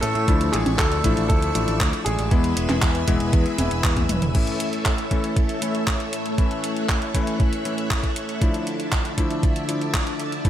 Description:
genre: italo disco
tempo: 118 BPM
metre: 4/4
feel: straight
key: A major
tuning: A4 = 440 Hz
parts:
  - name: warm concert grand piano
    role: melody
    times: 0.0-3.8 s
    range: G#3 to A4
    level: -27 LUFS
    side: equal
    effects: digital delay
  - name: string machine, full ensemble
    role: sustained chords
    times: 0.0-10.5 s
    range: D3 to F#6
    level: -28 LUFS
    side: right 1 dB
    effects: ensemble chorus
  - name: warm electric grand piano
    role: stabs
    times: 0.0-10.5 s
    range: E3 to E4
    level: -27 LUFS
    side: left 4 dB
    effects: digital delay
  - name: modern bright picked electric bass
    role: bass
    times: 0.0-4.3 s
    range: E1 to A2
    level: -25 LUFS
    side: equal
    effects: none
  - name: house drum kit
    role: drums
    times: 0.0-10.5 s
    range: congas, crash cymbal, handclaps, hi-hat, toms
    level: -27 LUFS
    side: right 1 dB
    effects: gated reverb
  - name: electronic kick drum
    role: drums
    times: 0.3-10.5 s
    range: none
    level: -21 LUFS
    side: right 1 dB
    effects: none
room: light reverb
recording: none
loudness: -19 LUFS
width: side -11 dB against mid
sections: 0.0-4.3 A section; 4.3-10.5 B section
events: drum fill 4.0-4.3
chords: 0.3 Dmadd9; 2.3 E; 4.3 A; 8.4 Dmadd9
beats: | 0.28 0.79 1.30 1.80 | 2.31 2.82 3.33 3.84 | 4.35 4.86 5.37 5.87 | 6.38 6.89 7.40 7.91 | 8.42 8.92 9.43 9.94 | 10.45

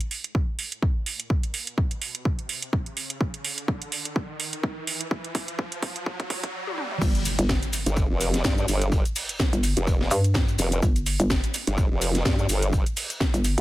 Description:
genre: bass house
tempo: 126 BPM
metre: 4/4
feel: swing 56% on 16ths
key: unclear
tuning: A4 = 440 Hz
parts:
  - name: house drum kit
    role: drums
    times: 0.0-13.6 s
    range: crash cymbal, hi-hat, shaker, snare drum, toms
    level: -29 LUFS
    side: right 1 dB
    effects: none
  - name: riser and impact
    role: sound effects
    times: 1.2-8.9 s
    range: none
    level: -35 LUFS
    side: right 1 dB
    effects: none
  - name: electronic kick drum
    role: drums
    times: 0.3-13.3 s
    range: none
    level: -24 LUFS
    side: equal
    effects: none
  - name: hollow knocking FM bass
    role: bass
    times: 7.0-13.6 s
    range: G1 to G2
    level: -23 LUFS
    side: equal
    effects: overdrive, sidechain pumping
  - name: crunchy breakbeat drum kit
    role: drums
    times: 7.0-13.6 s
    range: hi-hat, snare drum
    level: -38 LUFS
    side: equal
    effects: sidechain pumping on hats, high-pass filter on hats, high-pass filter on snare, high-pass filter on room
  - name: formant-sweep wobble bass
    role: bass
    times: 7.9-12.8 s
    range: F1 to G2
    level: -24 LUFS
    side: equal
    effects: chorus, sidechain pumping
room: digital ambience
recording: dense, heavily limited modern master, high-pass filter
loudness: -23 LUFS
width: side -16 dB against mid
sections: 0.0-7.0 A section; 7.0-13.6 B section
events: build-up 0.0-7.0; riser 1.2-7.0; drum fill 3.2-6.5, 6.7-7.0; drop 7.0-13.6; impact 7.0-8.9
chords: 0.0 N.C.; 7.0 Fsus2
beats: 0.35 0.82 | 1.30 1.78 2.25 2.73 | 3.21 3.68 4.16 4.63 | 5.11 5.59 6.06 6.54 | 7.02 7.49 7.97 8.44 | 8.92 9.40 9.87 10.35 | 10.82 11.30 11.78 12.25 | 12.73 13.21

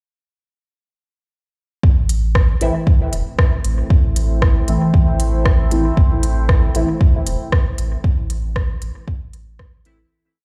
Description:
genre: dub techno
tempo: 116 BPM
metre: 4/4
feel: straight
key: A minor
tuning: A4 = 440 Hz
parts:
  - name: deep dark ambient pad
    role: sustained chords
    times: 3.2-10.1 s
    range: A3 to C5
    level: -31 LUFS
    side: equal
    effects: chorus, built-in reverb, sidechain pumping
  - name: warm sub bass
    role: bass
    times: 1.8-10.0 s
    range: E1 to A1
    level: -22 LUFS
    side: equal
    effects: sidechain pumping
  - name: electronic kick drum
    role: drums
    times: 1.8-9.7 s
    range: none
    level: -16 LUFS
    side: equal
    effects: studio reverb
  - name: deep house drum kit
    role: drums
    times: 2.1-10.0 s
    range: hi-hat, rim click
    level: -27 LUFS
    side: equal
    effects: studio reverb, dub echo
  - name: resonant sweep polysynth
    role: stabs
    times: 2.6-10.0 s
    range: E3 to E4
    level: -24 LUFS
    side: equal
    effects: chorus, phaser, cassette tape, sidechain pumping, dub echo
room: little or no reverb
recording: played on a big sound system in a bare room, large studio reverb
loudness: -17 LUFS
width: mono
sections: 1.8-10.1 groove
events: fade-out 7.4-10.1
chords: 1.8 Am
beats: | 1.83 2.35 2.87 3.39 | 3.90 4.42 4.94 5.46 | 5.97 6.49 7.01 7.52 | 8.04 8.56 9.08 9.59

